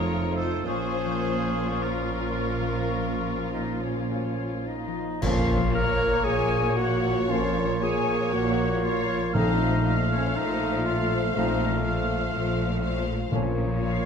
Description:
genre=classical, slow romantic movement for symphony orchestra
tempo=51-62 BPM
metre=4/4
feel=rubato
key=Bb minor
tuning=A4 = 440 Hz
part: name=warm studio violin section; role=melody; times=0.0-14.1 s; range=Bb4 to F5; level=-37 LUFS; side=left 4 dB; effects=none
part: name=bright flute section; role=second line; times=0.0-14.1 s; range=Db5 to Eb6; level=-34 LUFS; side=left 5 dB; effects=none
part: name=clear oboe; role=second line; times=0.0-14.1 s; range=F4 to F5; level=-34 LUFS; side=equal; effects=none
part: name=mellow clarinet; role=second line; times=0.0-14.1 s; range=Db4 to Bb4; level=-31 LUFS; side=equal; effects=none
part: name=rich studio violin section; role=second line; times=0.0-14.1 s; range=F4 to Db5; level=-37 LUFS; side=left 3 dB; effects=none
part: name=dark studio viola section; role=accompaniment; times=0.0-14.1 s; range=F3 to Bb3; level=-35 LUFS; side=right 3 dB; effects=none
part: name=warm bassoon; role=accompaniment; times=0.0-14.1 s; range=F3 to Bb3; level=-34 LUFS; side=equal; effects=none
part: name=mellow French horn section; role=sustained chords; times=0.0-13.7 s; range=A3 to Eb4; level=-34 LUFS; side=left 4 dB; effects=none
part: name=concert harp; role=arpeggios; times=0.0-14.1 s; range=F2 to Eb5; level=-33 LUFS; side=left 10 dB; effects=none
part: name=dark studio double bass section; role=bass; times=0.0-14.1 s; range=F1 to Bb1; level=-31 LUFS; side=right 3 dB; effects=none
part: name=warm studio cello section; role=bass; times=0.0-14.1 s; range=F2 to Bb2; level=-32 LUFS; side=right 3 dB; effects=none
part: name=bright trombone section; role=sustained chords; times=5.2-13.7 s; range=F2 to F3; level=-35 LUFS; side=right 4 dB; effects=none
part: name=clash cymbals and concert bass drum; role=percussion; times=5.2-7.2 s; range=none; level=-33 LUFS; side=equal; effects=none
part: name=timpani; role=percussion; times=5.2-14.1 s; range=Bb2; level=-32 LUFS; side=left 1 dB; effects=none
room=moderate scoring stage reverb, RT60 1.5 s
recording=none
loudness=-23 LUFS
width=side -7 dB against mid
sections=0.0-5.2 A section; 5.2-14.1 A section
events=band accent 5.2-6.2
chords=0.0 F7; 0.7 Bbm; 9.3 F/Bb; 13.3 Bbm

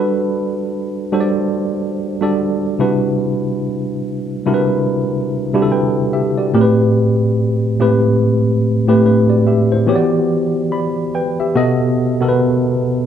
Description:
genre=R&B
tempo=72 BPM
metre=4/4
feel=swing 59% on 16ths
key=unclear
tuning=A4 = 442 Hz
part: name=tine electric piano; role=solo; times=0.0-13.1 s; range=A2 to B5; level=-14 LUFS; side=equal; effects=overdrive, fast stereo tremolo
room=moderate studio reverb, RT60 0.8 s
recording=band playing live in one room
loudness=-14 LUFS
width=side -9 dB against mid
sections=0.0-13.1 A section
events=none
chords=0.0 Gmaj9; 2.8 Cmaj9#11; 6.5 Am9; 9.9 Em9; 11.5 B7

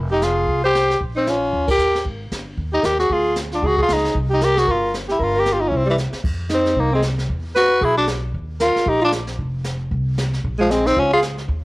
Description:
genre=jazz, small-group swing and bop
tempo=229 BPM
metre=4/4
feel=swing 58% on 8ths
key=C minor, F minor from 6.2 s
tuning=A4 = 441 Hz
part: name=upright bass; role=bass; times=0.0-11.6 s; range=F1 to F2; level=-24 LUFS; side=equal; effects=tube saturation
part: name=growling tenor saxophone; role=melody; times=0.1-11.2 s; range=E3 to G4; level=-19 LUFS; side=left 1 dB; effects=cassette tape
part: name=growling alto saxophone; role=second line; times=0.1-11.2 s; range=G3 to C5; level=-21 LUFS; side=right 1 dB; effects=cassette tape
part: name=jazz brush drum kit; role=drums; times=0.2-11.6 s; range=brushed snare drum, crash cymbal, hi-hat, kick drum, ride cymbal, snare drum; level=-28 LUFS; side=equal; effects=cassette tape
room=light reverb, small room ambience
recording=home recording on cassette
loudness=-17 LUFS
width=side -21 dB against mid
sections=0.0-6.2 A section; 6.2-11.6 B section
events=band accent 1.7; drum fill 6.0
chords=0.0 Fm; 1.0 Bbm; 1.5 Eb; 2.0 Ab5; 3.1 Ddim; 3.6 Dbsus2; 4.1 C5; 5.2 Gm7; 5.7 C; 6.2 F5; 7.3 Esus2; 8.3 Ebsus2; 9.4 F5; 10.4 Bbm

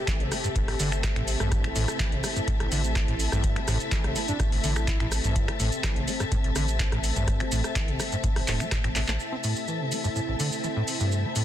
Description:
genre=acid house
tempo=125 BPM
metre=4/4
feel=straight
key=A minor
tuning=A4 = 440 Hz
part: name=warm analog pad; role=sustained chords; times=0.0-11.4 s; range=C3 to G4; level=-35 LUFS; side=right 2 dB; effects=chorus, sidechain pumping
part: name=warm symphonic string section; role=texture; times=0.0-11.4 s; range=C4 to A5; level=-33 LUFS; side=left 3 dB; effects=sidechain pumping
part: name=acid bass, saw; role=riff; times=0.1-11.4 s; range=A1 to C4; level=-31 LUFS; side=equal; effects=overdrive, wide subtle chorus
part: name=booming analog drum machine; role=drums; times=0.1-11.4 s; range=cabasa, finger snaps, handclaps, hi-hat, rim click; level=-31 LUFS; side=equal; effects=none
part: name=electronic kick drum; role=drums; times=0.1-8.8 s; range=none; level=-28 LUFS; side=equal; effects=none
part: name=round analog bass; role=bass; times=0.2-9.2 s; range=E1 to A1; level=-29 LUFS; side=equal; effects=sidechain pumping
part: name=mellow alto saxophone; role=melody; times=4.3-5.1 s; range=D4 to E4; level=-38 LUFS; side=equal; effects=ping-pong delay
room=light reverb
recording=dense, heavily limited modern master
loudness=-24 LUFS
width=side -11 dB against mid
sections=0.0-9.2 A section; 9.2-11.4 B section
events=drum fill 9.0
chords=0.0 Am

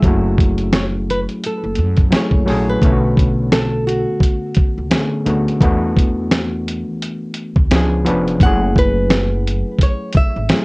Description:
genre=lo-fi hip hop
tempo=86 BPM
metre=4/4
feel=swing 59% on 16ths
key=F# minor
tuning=A4 = 439 Hz
part: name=overdriven reed electric piano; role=accompaniment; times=0.0-10.6 s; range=D3 to B4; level=-19 LUFS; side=left 1 dB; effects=cassette tape
part: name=upright bass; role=bass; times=0.0-10.5 s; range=E#1 to F#2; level=-20 LUFS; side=equal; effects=none
part: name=dusty soul sampler-style drum kit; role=drums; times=0.0-10.6 s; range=hi-hat, kick drum, snare drum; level=-14 LUFS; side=equal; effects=none
part: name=flamenco guitar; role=melody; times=0.8-10.6 s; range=F#4 to F#5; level=-22 LUFS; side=equal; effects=none
room=light reverb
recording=worn, warbling old tape, cassette tape, warbly pitch drift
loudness=-14 LUFS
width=side -28 dB against mid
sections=0.0-2.8 A section; 2.8-10.6 B section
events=none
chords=0.0 F#m9; 2.8 Bm7; 5.6 E7sus4; 7.7 C#7b9; 8.4 F#m9

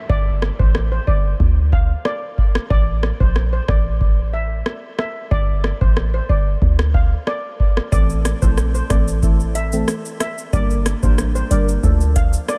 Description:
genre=dancehall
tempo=92 BPM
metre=4/4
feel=straight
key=unclear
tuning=A4 = 439 Hz
part: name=downlifter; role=sound effects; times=0.0-2.7 s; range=none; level=-47 LUFS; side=equal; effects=none
part: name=steel pan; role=melody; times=0.1-12.6 s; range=C5 to F5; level=-30 LUFS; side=equal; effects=analog delay
part: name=warm 808-style bass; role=bass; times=0.1-12.4 s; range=G1 to D2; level=-21 LUFS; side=equal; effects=none
part: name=booming analog drum machine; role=drums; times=0.1-12.6 s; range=hi-hat, kick drum, rim click, shaker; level=-20 LUFS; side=equal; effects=overdrive
part: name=deep mellow chord stab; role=accompaniment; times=7.9-12.6 s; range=E3 to Bb4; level=-27 LUFS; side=equal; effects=chorus, sidechain pumping
room=little or no reverb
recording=none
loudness=-18 LUFS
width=mono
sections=0.0-12.6 A section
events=break 0.0-7.9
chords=0.1 Gsus2; 1.4 N.C.; 5.3 Gsus2; 6.6 N.C.; 7.9 Am; 10.5 Gm; 11.8 Dm

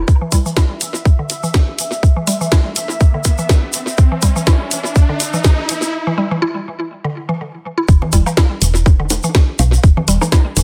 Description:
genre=minimal techno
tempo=123 BPM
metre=4/4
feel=swing 56% on 16ths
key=E minor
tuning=A4 = 440 Hz
part: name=woody FM bass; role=bass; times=0.0, 7.9-10.6 s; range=E1 to B1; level=-17 LUFS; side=equal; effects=sidechain pumping
part: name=bubbling stepped-filter texture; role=texture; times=0.2-5.9 s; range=E5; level=-31 LUFS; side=equal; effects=chorus, built-in reverb, sidechain pumping
part: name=electronic kick drum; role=drums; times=0.1-10.4 s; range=none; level=-13 LUFS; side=equal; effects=none
part: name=tube shaker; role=percussion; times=0.1-10.6 s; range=none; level=-25 LUFS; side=equal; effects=none
part: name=riser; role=sound effects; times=2.3-5.9 s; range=none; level=-28 LUFS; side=equal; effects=none
part: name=mallet-like synth pluck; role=riff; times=0.2-10.3 s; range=D3 to E4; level=-23 LUFS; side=equal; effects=chorus, vintage 12-bit sampler grit, sidechain pumping, tape echo
part: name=garage drum kit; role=drums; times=0.3-10.6 s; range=hi-hat, snare drum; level=-22 LUFS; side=equal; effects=tape echo
part: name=congas, cowbell, woodblock and bongos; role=percussion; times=8.0-10.6 s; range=none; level=-26 LUFS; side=equal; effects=overdrive, analog delay
room=light reverb, digital ambience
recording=echo-heavy mix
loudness=-15 LUFS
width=mono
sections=0.1-7.9 A section; 7.9-10.6 B section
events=build-up 0.1-7.9; filter sweep on synth arpeggio sound 0.1-7.9; riser 2.3-5.9; break 5.9-7.9; drop 7.9-10.6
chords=none

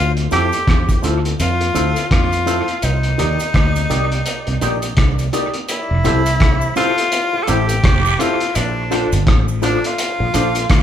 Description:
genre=lovers rock reggae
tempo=84 BPM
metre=4/4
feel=swing 59% on 16ths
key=F major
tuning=A4 = 440 Hz
part: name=breathy tenor saxophone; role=melody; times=0.0-10.8 s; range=D4 to A4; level=-20 LUFS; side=left 1 dB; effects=none
part: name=fingered electric bass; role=bass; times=0.0-10.8 s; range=F1 to F2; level=-19 LUFS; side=equal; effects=none
part: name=cloth-damped thuddy drum kit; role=drums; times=0.2-10.8 s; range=hi-hat, kick drum, rim click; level=-19 LUFS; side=equal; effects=none
part: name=mellow tine electric piano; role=accompaniment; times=0.3-10.5 s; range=D4 to D5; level=-25 LUFS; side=left 3 dB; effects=medium stereo tremolo, dub echo
part: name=electric guitar with an envelope filter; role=stabs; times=0.3-10.5 s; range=C4 to Bb4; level=-24 LUFS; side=right 3 dB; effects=none
part: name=cabasa and guiro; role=percussion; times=0.3-10.8 s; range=none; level=-31 LUFS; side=right 5 dB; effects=dub echo
room=moderate large studio reverb, RT60 0.9 s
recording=band playing live in one room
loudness=-14 LUFS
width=side -10 dB against mid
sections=0.0-5.7 A section; 5.7-10.8 B section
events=none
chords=0.0 Dm7; 2.8 Cm7; 5.7 Fmaj7; 8.6 Bbmaj7

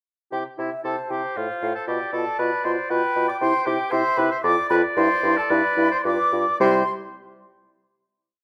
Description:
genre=quick classical-period movement for wind quintet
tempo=106-118 BPM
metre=3/4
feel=rubato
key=C major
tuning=A4 = 438 Hz
part: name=mellow silver concert flute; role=melody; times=0.3-6.9 s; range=E5 to D6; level=-29 LUFS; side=equal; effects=none
part: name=warm oboe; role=second line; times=0.3-6.8 s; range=E4 to D5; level=-29 LUFS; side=equal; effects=none
part: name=mellow French horn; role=accompaniment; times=0.3-6.8 s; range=G3 to F4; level=-29 LUFS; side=equal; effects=none
part: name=warm bassoon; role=bass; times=0.3-6.8 s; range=F2 to C3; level=-28 LUFS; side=equal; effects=none
part: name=clear clarinet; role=accompaniment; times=0.8-6.8 s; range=E4 to G5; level=-30 LUFS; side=equal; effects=none
room=moderate recital hall reverb, RT60 1.5 s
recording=none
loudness=-22 LUFS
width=mono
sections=0.3-6.6 A section; 6.6-8.2 final chord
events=none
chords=0.3 C; 1.4 F/A; 1.9 G7/B; 3.4 C; 4.4 Dm/F; 5.0 Am11/G (rootless); 6.1 G7; 6.6 C

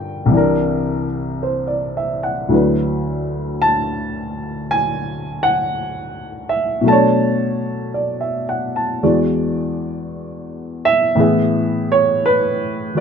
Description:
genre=jazz ballad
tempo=56 BPM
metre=4/4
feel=swing 66% on 8ths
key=unclear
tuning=A4 = 439 Hz
part: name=warm baby grand piano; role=solo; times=0.0-13.0 s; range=C2 to A5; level=-16 LUFS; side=equal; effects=none
room=moderate club reverb, RT60 0.9 s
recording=none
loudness=-16 LUFS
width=side -6 dB against mid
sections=0.0-13.0 A section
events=none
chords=0.3 C9; 2.5 D69; 6.9 Bm9; 9.0 E7; 11.2 Amaj9

